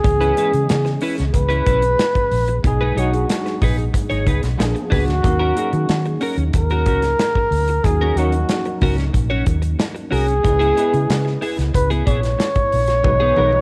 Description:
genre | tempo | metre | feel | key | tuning
polished 1980s jazz-funk pop | 92 BPM | 4/4 | straight | C# dorian | A4 = 440 Hz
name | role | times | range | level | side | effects
breathy flugelhorn | melody | 0.0-13.6 s | F#4 to C#5 | -22 LUFS | equal | cassette tape
bell-like tine electric piano | accompaniment | 0.0-13.6 s | E3 to B4 | -29 LUFS | equal | ensemble chorus, cassette tape
clean electric guitar | riff | 0.0-13.6 s | B3 to C#5 | -27 LUFS | equal | analog chorus, cassette tape
vintage muted fingered electric bass | bass | 0.0-13.6 s | G#1 to D#3 | -22 LUFS | equal | none
modern studio drum kit | drums | 0.0-13.6 s | hi-hat, kick drum, snare drum, toms | -24 LUFS | equal | cassette tape
room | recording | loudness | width
little or no reverb | home recording on cassette | -18 LUFS | mono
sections
0.0-13.6 A section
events
drum fill 13.0-13.6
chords
0.0 C#m7; 2.6 B6; 4.6 A#7b9; 5.2 D#m7; 10.4 C#m7; 13.0 B6

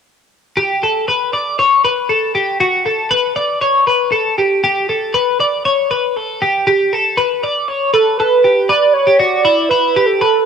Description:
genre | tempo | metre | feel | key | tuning
indie pop | 118 BPM | 4/4 | straight | unclear | A4 = 440 Hz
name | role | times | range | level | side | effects
twelve-string electric guitar | arpeggios | 0.6-10.5 s | E4 to D5 | -13 LUFS | left 2 dB | analog chorus, tape echo
warm velvety synth lead | melody | 7.9-10.5 s | A4 to D5 | -12 LUFS | right 3 dB | chorus
room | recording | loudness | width
moderate echo chamber reverb, RT60 1.4 s, digital ambience | none | -12 LUFS | side -7 dB against mid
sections
0.6-8.7 A section; 8.7-10.5 B section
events
none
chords
0.6 Gadd9; 2.6 Bm7; 4.4 Gadd9; 8.7 Em7

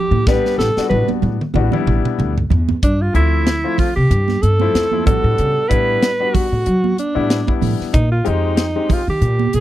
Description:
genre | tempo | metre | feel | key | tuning
electric jazz fusion | 94 BPM | 4/4 | swing 56% on 16ths | unclear | A4 = 440 Hz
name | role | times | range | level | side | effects
warm alto saxophone | melody | 0.0-9.6 s | D4 to B4 | -19 LUFS | right 2 dB | none
clear concert grand piano | accompaniment | 0.0-9.3 s | F3 to G4 | -22 LUFS | left 9 dB | none
upright bass | bass | 0.1-9.6 s | A1 to F#3 | -17 LUFS | equal | none
congas | percussion | 0.1-9.5 s | none | -24 LUFS | right 16 dB | none
crisp fusion drum kit | drums | 0.3-9.6 s | hi-hat, kick drum, snare drum, toms | -20 LUFS | equal | none
room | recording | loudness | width
little or no reverb | dry, close 1970s-style studio recording | -14 LUFS | side -13 dB against mid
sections
0.0-2.8 A section; 2.8-9.6 B section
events
alto saxophone solo 0.0-2.8; drum fill 0.3-2.8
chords
0.0 A9sus4; 2.8 G13sus4; 5.1 A13sus4; 7.9 Bb13sus4

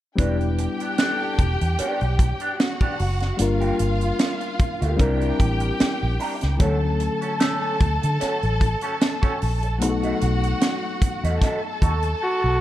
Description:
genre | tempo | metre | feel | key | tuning
lush 1970s-style soul | 75 BPM | 4/4 | swing 54% on 16ths | E dorian | A4 = 440 Hz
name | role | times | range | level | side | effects
warm studio string section | second line | 0.2-12.6 s | F4 to A5 | -28 LUFS | left 1 dB | none
reed electric piano | accompaniment | 0.2-12.6 s | D3 to B4 | -28 LUFS | left 3 dB | none
electric guitar through a small old amp | riff | 0.2-12.3 s | A3 to Bb4 | -30 LUFS | right 1 dB | wah
vintage muted fingered electric bass | bass | 0.2-12.6 s | E1 to D3 | -23 LUFS | equal | none
tight funk drum kit | drums | 0.2-12.2 s | hi-hat, kick drum, snare drum | -23 LUFS | equal | none
growling alto saxophone | melody | 12.2-12.6 s | F#4 | -20 LUFS | right 1 dB | none
room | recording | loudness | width
light reverb, small room ambience | dark, warm production | -20 LUFS | side -13 dB against mid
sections
0.2-12.6 A section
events
drum fill 12.2-12.6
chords
0.2 Em7; 3.4 Gm7; 5.0 C9; 6.6 Dmaj7; 9.8 B7

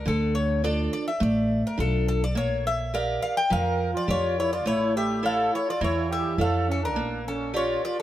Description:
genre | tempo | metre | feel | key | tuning
greek folk, Greek bouzouki band | 104 BPM | 4/4 | straight | unclear | A4 = 445 Hz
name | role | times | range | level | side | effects
Greek bouzouki | melody | 0.0-8.0 s | A4 to G5 | -27 LUFS | left 3 dB | none
upright bass | bass | 0.0-7.8 s | A1 to F2 | -28 LUFS | equal | none
picked steel-string acoustic guitar | accompaniment | 0.1-8.0 s | D3 to D5 | -29 LUFS | right 2 dB | none
accordion | second line | 3.5-8.0 s | C#4 to Bb4 | -30 LUFS | right 4 dB | light tremolo tuning
room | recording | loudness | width
moderate plate reverb, RT60 2.7 s | none | -23 LUFS | side -13 dB against mid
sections
0.1-8.0 A section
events
none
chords
0.1 Dm; 2.4 Bb6; 4.7 A; 7.0 Bb6

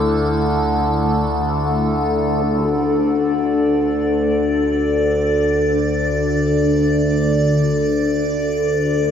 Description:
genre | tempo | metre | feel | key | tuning
dark ambient drone | free time | none | none | unclear | A4 = 439 Hz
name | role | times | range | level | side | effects
sweeping resonant pad | sustained chords | 0.0-2.5 s | D3 to E4 | -25 LUFS | equal | chorus, shimmer reverb
overtone-sweeping drone | drone | 0.0-9.1 s | D2 to D3 | -16 LUFS | left 1 dB | chorus, built-in reverb, phaser
icy glass pad | texture | 0.0-9.1 s | A4 to D5 | -24 LUFS | equal | chorus, built-in reverb, shimmer reverb
room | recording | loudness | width
wet huge ambient reverb, RT60 9.4 s | dark, warm production | -16 LUFS | side -8 dB against mid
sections
0.0-2.4 A section; 2.4-9.1 B section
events
none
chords
0.0 Dsus2; 2.4 N.C.

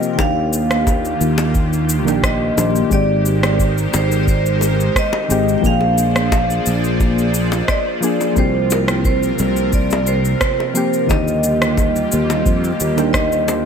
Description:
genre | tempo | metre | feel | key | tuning
sunset chillout | 88 BPM | 4/4 | straight | unclear | A4 = 439 Hz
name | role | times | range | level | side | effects
vibraphone with medium hard mallets | melody | 0.0-13.7 s | Bb4 to G5 | -21 LUFS | right 2 dB | ping-pong delay
soft electric-piano-like synth keys | accompaniment | 0.0-13.7 s | D3 to C5 | -22 LUFS | moving between left 7 dB and right 7 dB | chorus, auto-pan
airy breathy pad | sustained chords | 0.0-13.7 s | C3 to D5 | -23 LUFS | equal | chorus
electronic cabasa and rim click | drums | 0.0-13.6 s | none | -23 LUFS | left 1 dB | overdrive, gated reverb
sustaining fretless electric bass | bass | 0.2-13.7 s | Ab1 to F2 | -18 LUFS | equal | tube saturation, analog chorus
electronic kick drum | drums | 0.2-13.3 s | none | -19 LUFS | equal | overdrive
bongos | percussion | 0.2-13.6 s | none | -25 LUFS | left 5 dB | none
room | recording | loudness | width
light reverb | bright 1980s-style digital production | -14 LUFS | side -7 dB against mid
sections
0.0-13.7 A section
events
none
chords
0.2 Ebmaj7; 2.9 Abmaj7; 5.6 Bb7; 8.4 C7sus4; 11.1 Ebmaj7

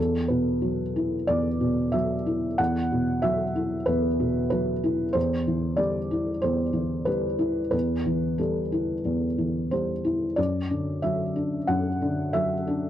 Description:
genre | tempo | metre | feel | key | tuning
neoclassical minimalist piano | 92 BPM | 4/4 | rubato | unclear | A4 = 440 Hz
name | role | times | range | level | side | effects
felt-muted upright piano | solo | 0.0-12.9 s | E2 to F#5 | -23 LUFS | equal | none
room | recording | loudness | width
little or no reverb | dry, close 1970s-style studio recording | -23 LUFS | side -11 dB against mid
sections
0.0-12.9 A section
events
none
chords
0.0 Esus2; 5.2 Am7/E; 10.4 D/F#

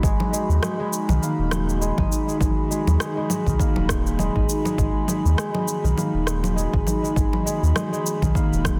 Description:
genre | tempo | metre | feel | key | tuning
organic downtempo | 101 BPM | 4/4 | swing 56% on 16ths | G# minor | A4 = 441 Hz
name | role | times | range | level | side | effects
airy breathy pad | sustained chords | 0.0-8.8 s | G#3 to B5 | -34 LUFS | equal | chorus, sidechain pumping
concert harp | arpeggios | 0.0-8.8 s | D#3 to D#4 | -28 LUFS | equal | digital delay
warm sub bass | bass | 0.0-8.8 s | D#1 to D#2 | -24 LUFS | equal | none
electronic kick drum | drums | 0.0-8.8 s | none | -26 LUFS | equal | studio reverb
electronic shaker, congas and rim click | drums | 0.0-8.8 s | none | -30 LUFS | equal | studio reverb, soft clipping on snare
room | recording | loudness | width
light reverb | dense, heavily limited modern master | -22 LUFS | mono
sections
0.0-8.8 A section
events
none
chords
0.0 G#m7

